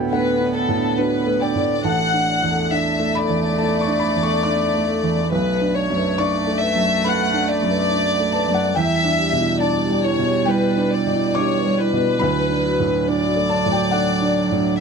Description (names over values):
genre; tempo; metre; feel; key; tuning
neoclassical piano and strings; 70 BPM; 4/4; rubato; D major; A4 = 441 Hz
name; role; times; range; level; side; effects
warm cello; second line; 0.0-14.8 s; F#3 to B3; -26 LUFS; right 4 dB; none
felt-muted upright piano; accompaniment; 0.0-14.8 s; A1 to D6; -21 LUFS; right 2 dB; none
marimba with soft mallets; arpeggios; 0.0-14.7 s; D4 to A5; -27 LUFS; right 1 dB; slapback echo
warm chamber violin section; melody; 0.1-14.8 s; A4 to F#5; -21 LUFS; left 3 dB; none
room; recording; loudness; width
light reverb; close, detailed microphones; -17 LUFS; side -5 dB against mid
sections
0.0-14.8 A section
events
none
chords
0.0 D6; 1.9 Asus4; 5.3 Bm7; 8.7 Em7; 12.2 D6